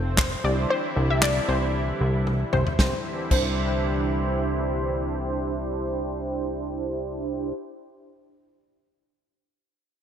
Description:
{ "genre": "dance-pop", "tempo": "115 BPM", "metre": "4/4", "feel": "straight", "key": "C major", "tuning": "A4 = 440 Hz", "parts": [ { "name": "lush unison pad", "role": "sustained chords", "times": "0.0-7.0 s", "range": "D3 to E4", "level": "-31 LUFS", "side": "equal", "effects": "chorus, sidechain pumping, low-pass filter" }, { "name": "plucky analog bass", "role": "bass", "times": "0.0-7.5 s", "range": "F1 to C2", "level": "-27 LUFS", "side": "equal", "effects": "sidechain pumping" }, { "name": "wide unison pluck", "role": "melody", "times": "0.2-4.3 s", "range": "C5 to E5", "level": "-28 LUFS", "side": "left 2 dB", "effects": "sidechain pumping, low-pass filter" }, { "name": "natural country drum kit", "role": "drums", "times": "0.2-3.5 s", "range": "crash cymbal, handclaps, kick drum, snare drum, toms", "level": "-25 LUFS", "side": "equal", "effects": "gated reverb" }, { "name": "mellow synth brass", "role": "accompaniment", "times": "0.4-7.5 s", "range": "D4 to D5", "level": "-30 LUFS", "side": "right 2 dB", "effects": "chorus, sidechain pumping, low-pass filter" } ], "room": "moderate lush hall reverb, RT60 1.9 s, small room ambience", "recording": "bright 1980s-style digital production", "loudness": "-23 LUFS", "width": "side -8 dB against mid", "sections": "0.0-2.8 A section; 2.8-7.0 B section", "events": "drum fill 2.3-2.8", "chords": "0.4 Cadd9" }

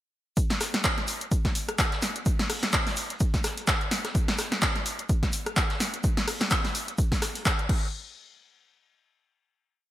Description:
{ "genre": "house", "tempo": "127 BPM", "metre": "4/4", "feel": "swing 56% on 16ths", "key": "none", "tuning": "none", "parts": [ { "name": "electronic kick drum", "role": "drums", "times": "0.4-7.8 s", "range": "none", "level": "-26 LUFS", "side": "equal", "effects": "overdrive" }, { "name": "punchy analog drum machine", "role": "drums", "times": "0.4-7.8 s", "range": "crash cymbal, handclaps, hi-hat, rim click, snare drum", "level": "-27 LUFS", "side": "equal", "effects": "overdrive, gated reverb" }, { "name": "vintage brush drum kit", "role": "drums", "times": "0.4-7.6 s", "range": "hi-hat, shaker, snare drum", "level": "-36 LUFS", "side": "equal", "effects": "high-pass filter on hats, high-pass filter on snare, high-pass filter on perc, high-pass filter on room, gated reverb" } ], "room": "light reverb, studio reverb", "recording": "bright 1980s-style digital production", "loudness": "-24 LUFS", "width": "side -14 dB against mid", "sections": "0.4-7.9 drop; 7.9-9.8 final hit", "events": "drop 0.4-7.9", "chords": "none" }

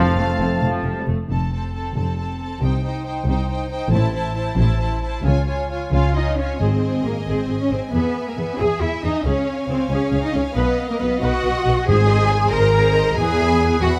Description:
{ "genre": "cinematic", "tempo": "91 BPM (dotted quarters)", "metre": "6/8", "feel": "straight", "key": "F major, Ab major from 6.6 s", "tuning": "A4 = 440 Hz", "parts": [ { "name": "warm symphonic violin section", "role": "melody", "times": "0.0-14.0 s", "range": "Bb4 to Bb5", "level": "-30 LUFS", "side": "equal", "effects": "none" }, { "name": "bright oboe", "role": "second line", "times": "0.0-1.1 s", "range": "A5", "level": "-31 LUFS", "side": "equal", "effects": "none" }, { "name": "clear clarinet", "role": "second line", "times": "0.0-1.1 s", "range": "C4", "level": "-32 LUFS", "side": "equal", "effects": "none" }, { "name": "clear symphonic violin section", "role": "second line", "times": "0.0-14.0 s", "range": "A4 to C6", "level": "-34 LUFS", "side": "equal", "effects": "none" }, { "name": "mellow large flute ensemble", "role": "second line", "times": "0.0-1.0 s", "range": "A5", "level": "-33 LUFS", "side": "equal", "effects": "none" }, { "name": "rich studio viola section", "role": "accompaniment", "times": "0.0-14.0 s", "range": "F3 to D#5", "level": "-30 LUFS", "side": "equal", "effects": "none" }, { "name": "mellow French horn section", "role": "sustained chords", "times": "0.0-1.1 s", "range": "A3 to C4", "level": "-29 LUFS", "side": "equal", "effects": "none" }, { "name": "dark trumpet section", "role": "stabs", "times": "0.0-0.6 s", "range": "F4", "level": "-37 LUFS", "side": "equal", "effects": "none" }, { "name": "rich symphonic double bass section", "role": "bass", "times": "0.0-14.0 s", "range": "F1 to E2", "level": "-24 LUFS", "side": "equal", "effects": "none" }, { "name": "warm studio cello section", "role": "bass", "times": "0.0-13.9 s", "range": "F2 to Bb4", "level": "-24 LUFS", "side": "equal", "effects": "none" }, { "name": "timpani", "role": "percussion", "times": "0.0-0.6, 6.6-7.2, 11.9-12.5 s", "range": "F2 to Ab2", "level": "-26 LUFS", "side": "equal", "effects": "none" } ], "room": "light reverb", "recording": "close, detailed microphones", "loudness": "-20 LUFS", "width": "mono", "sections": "0.0-1.3 A section; 1.3-6.6 B section; 6.6-14.0 C section", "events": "none", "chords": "0.0 F; 2.6 Cm; 3.9 Am; 5.3 Db; 6.6 Ab; 7.9 E; 9.3 Db; 10.6 B; 11.9 Ab; 13.2 E" }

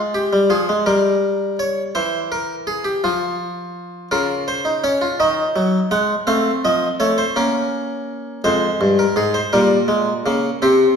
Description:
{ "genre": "classical, baroque-style 4-part fugue for harpsichord", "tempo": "55 BPM (dotted quarters)", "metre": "6/8", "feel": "straight", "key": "Bb minor", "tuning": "A4 = 444 Hz", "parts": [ { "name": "harpsichord", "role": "solo", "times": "0.0-11.0 s", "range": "F2 to Gb5", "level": "-16 LUFS", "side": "equal", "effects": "none" } ], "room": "wet recital hall reverb, RT60 1.4 s", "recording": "recorded in a church or concert hall", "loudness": "-16 LUFS", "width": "side -6 dB against mid", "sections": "0.0-11.0 A section", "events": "none", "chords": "0.0 Fm/Ab; 0.9 Gdim; 1.9 C/E; 3.0 N.C.; 4.1 Bbm/Db; 5.2 Ebmadd11; 6.3 F; 7.4 Bbm; 8.4 Fm; 9.5 Gdim/Bb" }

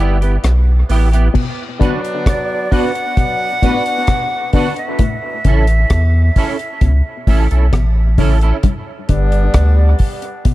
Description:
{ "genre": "dub reggae", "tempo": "66 BPM", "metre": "4/4", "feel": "straight", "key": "B minor", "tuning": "A4 = 440 Hz", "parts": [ { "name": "warm horn section", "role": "second line", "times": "0.0-10.0 s", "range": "F#3 to F#4", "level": "-23 LUFS", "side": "left 1 dB", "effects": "dub echo" }, { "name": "clean electric guitar", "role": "accompaniment", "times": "0.0-8.6 s", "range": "B3 to B4", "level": "-23 LUFS", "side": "right 5 dB", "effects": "ensemble chorus, dub echo" }, { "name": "warm sub bass", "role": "bass", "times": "0.0-9.9 s", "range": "G1 to E2", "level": "-12 LUFS", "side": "equal", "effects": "none" }, { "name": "deep reggae drum kit", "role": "drums", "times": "0.2-10.5 s", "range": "crash cymbal, hi-hat, kick drum, rim click", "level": "-16 LUFS", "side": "equal", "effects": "none" }, { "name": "electric guitar with an envelope filter", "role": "arpeggios", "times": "1.3-10.5 s", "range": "G2 to D3", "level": "-25 LUFS", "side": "left 6 dB", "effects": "dub echo" }, { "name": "percussive organ stab", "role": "stabs", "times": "1.8-4.7 s", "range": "B3 to B4", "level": "-24 LUFS", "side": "left 3 dB", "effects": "chorus, dub echo" }, { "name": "breathy bright jazz flute", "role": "melody", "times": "2.3-7.5 s", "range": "D5 to F#5", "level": "-21 LUFS", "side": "right 1 dB", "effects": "dub echo" } ], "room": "small room ambience", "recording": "echo-heavy mix", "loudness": "-12 LUFS", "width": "side -16 dB against mid", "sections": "0.0-1.3 A section; 1.3-10.5 B section", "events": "break 0.0-1.3, 1.3-5.0", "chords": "0.0 Em; 1.3 Bm; 5.0 A; 8.6 G" }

